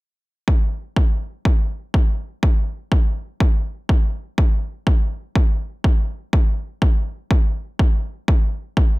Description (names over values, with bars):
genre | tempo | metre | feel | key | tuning
house | 123 BPM | 4/4 | swing 58% on 16ths | none | none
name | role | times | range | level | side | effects
electronic kick drum | drums | 0.5-8.9 s | none | -16 LUFS | equal | none
room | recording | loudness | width
little or no reverb | dense, heavily limited modern master | -18 LUFS | side -22 dB against mid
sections
0.5-9.0 A section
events
none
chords
none